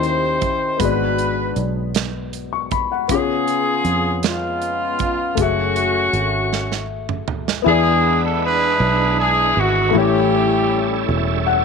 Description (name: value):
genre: slow gospel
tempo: 52 BPM (dotted quarters)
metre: 6/8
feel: straight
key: unclear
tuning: A4 = 440 Hz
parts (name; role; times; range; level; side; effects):
- warm horn section; melody; 0.0-11.1 s; G#3 to B#4; -19 LUFS; right 1 dB; none
- warm grand piano; accompaniment; 0.0-11.6 s; G#2 to C#6; -22 LUFS; left 13 dB; none
- fingered electric bass; bass; 0.0-11.6 s; E1 to E#2; -23 LUFS; right 2 dB; none
- modern studio drum kit; drums; 0.0-7.7 s; hi-hat, kick drum, snare drum, toms; -24 LUFS; right 8 dB; none
- bright tonewheel organ; sustained chords; 7.7-11.6 s; G3 to B4; -25 LUFS; right 17 dB; slow rotary speaker, overdrive, chorus vibrato
room: light reverb, studio reverb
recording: 1960s-style stereo with parts hard left and right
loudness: -16 LUFS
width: side -5 dB against mid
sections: 0.0-7.7 A section; 7.7-11.6 B section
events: drum fill 6.5-7.7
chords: 0.0 D#7b9; 0.8 G#m7b5; 3.1 C#7; 5.4 F#m9; 7.7 E7; 9.9 A7